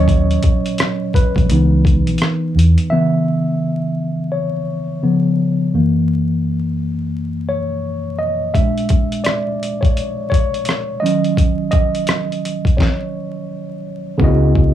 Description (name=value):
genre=lo-fi hip hop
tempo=85 BPM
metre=4/4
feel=swing 62% on 16ths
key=C# dorian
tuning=A4 = 440 Hz
part: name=tine electric piano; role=accompaniment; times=0.0-14.7 s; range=F#2 to E5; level=-17 LUFS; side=equal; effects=medium stereo tremolo, cassette tape
part: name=vintage muted fingered electric bass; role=bass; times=0.0-2.7, 14.2-14.7 s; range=A#1 to E2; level=-14 LUFS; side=equal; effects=transformer saturation
part: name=lo-fi sampler-style drum kit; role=drums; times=0.1-2.9, 8.5-14.7 s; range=hi-hat, kick drum, rim click, snare drum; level=-16 LUFS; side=equal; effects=none
room=light reverb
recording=dry, gritty hardware recording, vinyl crackle, small room ambience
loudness=-15 LUFS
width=side -11 dB against mid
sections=0.0-2.9 A section; 2.9-14.2 B section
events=tine electric piano solo 0.0-2.9, 2.9-14.2; stop 12.8-14.2; hi-hats muted 14.2-14.7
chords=0.0 D#m7; 1.5 C#m9; 2.9 C#m7; 5.0 C#7; 5.7 F#7; 8.5 A#7#9; 11.0 D#m7; 14.2 C#m11